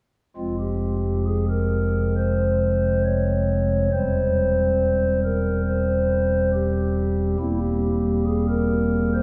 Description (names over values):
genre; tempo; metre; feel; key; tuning
classical, chorale-style piece for pipe organ; 68 BPM; 4/4; rubato; F minor; A4 = 438 Hz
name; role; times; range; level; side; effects
pipe organ, stopped flute; solo; 0.4-9.2 s; E1 to Db5; -22 LUFS; equal; none
room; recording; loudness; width
wet church reverb, RT60 3.8 s; recorded in a church or concert hall; -22 LUFS; mono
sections
0.4-9.2 A section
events
none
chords
0.4 Fm; 3.9 C/E; 7.4 C7/E